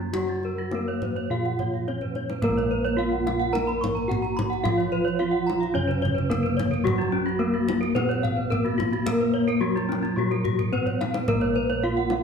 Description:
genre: Balinese gamelan.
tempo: 109 BPM.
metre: 4/4.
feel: straight.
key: Bb pelog.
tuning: A4 = 440 Hz.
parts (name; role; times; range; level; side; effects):
gamelan-type bronze metallophone; melody; 0.0-12.2 s; Gb3 to Bb4; -27 LUFS; left 1 dB; none.
gamelan-type bronze metallophone; accompaniment; 0.0-12.2 s; Db3 to Cb4+35c; -32 LUFS; right 4 dB; none.
gamelan-type bronze metallophone; arpeggios; 0.0-12.1 s; F4 to Cb6+35c; -32 LUFS; right 7 dB; none.
gamelan-type bossed gongs; bass; 0.0-12.2 s; Bb1 to Bb4; -29 LUFS; right 1 dB; none.
gamelan-type bronze metallophone; arpeggios; 0.1-12.2 s; Db4 to Db6; -30 LUFS; left 4 dB; none.
kendang; percussion; 0.1-12.2 s; none; -32 LUFS; left 1 dB; none.
room: moderate scoring stage reverb, RT60 1.7 s.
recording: dark, warm production.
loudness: -22 LUFS.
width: side -6 dB against mid.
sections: 0.0-2.4 A section; 2.4-12.2 B section.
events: drum fill 2.0-2.4, 10.6-11.3.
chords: none.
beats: | 0.14 0.73 1.31 1.88 | 2.44 2.99 3.54 4.09 | 4.65 5.20 5.75 6.30 | 6.86 7.41 7.96 8.51 | 9.07 9.62 10.17 10.72 | 11.28 11.83.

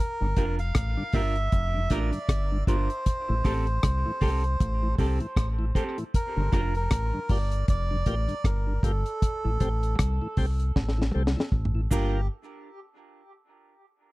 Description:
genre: dub reggae.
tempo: 78 BPM.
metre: 4/4.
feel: swing 58% on 16ths.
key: G dorian.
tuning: A4 = 440 Hz.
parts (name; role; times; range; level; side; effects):
melodica; melody; 0.0-12.3 s; G4 to F5; -33 LUFS; right 1 dB; dub echo.
tonewheel organ; accompaniment; 0.2-12.2 s; G2 to G4; -34 LUFS; left 2 dB; slow rotary speaker.
deep dub fingered electric bass; bass; 0.2-12.3 s; F1 to C2; -26 LUFS; equal; none.
clean electric guitar; accompaniment; 0.4-6.7, 11.9-12.2 s; C4 to Bb4; -36 LUFS; right 4 dB; dub echo.
deep reggae drum kit; drums; 0.4-12.1 s; crash cymbal, hi-hat, kick drum, rim click, snare drum, toms; -25 LUFS; equal; none.
cabasa; percussion; 11.9-12.3 s; none; -39 LUFS; right 4 dB; none.
room: little or no reverb.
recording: dry, close 1970s-style studio recording.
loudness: -24 LUFS.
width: side -20 dB against mid.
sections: 0.0-12.3 A section; 12.3-14.1 B section.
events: break 0.0-12.3; drum fill 10.8-12.3.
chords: 0.0 Gm7; 3.1 Am7; 6.1 Gm7; 9.2 Am7; 11.9 Gm7; 12.3 N.C..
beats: 0.75 1.52 2.29 | 3.06 3.83 4.60 5.37 | 6.14 6.91 7.68 8.45 | 9.22 9.99 10.76 11.53.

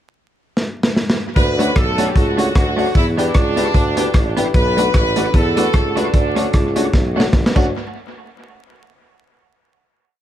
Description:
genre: ska.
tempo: 151 BPM.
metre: 4/4.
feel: swing 57% on 8ths.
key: D major.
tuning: A4 = 440 Hz.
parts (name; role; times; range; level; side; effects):
crunchy breakbeat drum kit; drums; 0.6-7.6 s; crash cymbal, hi-hat, kick drum, rim click, snare drum; -17 LUFS; equal; dub echo.
clear horn section; melody; 1.4-6.8 s; D4 to B4; -21 LUFS; right 1 dB; dub echo.
warm tuba; bass; 1.4-7.7 s; A1 to E2; -21 LUFS; right 1 dB; none.
clean electric guitar; accompaniment; 1.6-7.7 s; A3 to G4; -24 LUFS; right 3 dB; wide subtle chorus, dub echo.
warm upright piano; stabs; 1.6-7.7 s; D4 to C#5; -23 LUFS; left 5 dB; none.
room: moderate club reverb, RT60 0.7 s.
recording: vinyl crackle.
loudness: -14 LUFS.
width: side -11 dB against mid.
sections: 0.0-1.4 pickup bar; 1.4-7.7 A section; 7.7-9.3 final hit.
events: drum fill 0.6-1.4, 6.9-7.7.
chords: 0.0 N.C.; 1.4 Dmaj7; 3.0 Em7; 4.5 Bm7; 6.1 Dmaj7; 7.7 N.C..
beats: 0.17 0.57 0.97 | 1.36 1.76 2.16 2.56 | 2.95 3.35 3.75 4.15 | 4.54 4.94 5.34 5.74 | 6.14 6.54 6.93 7.33.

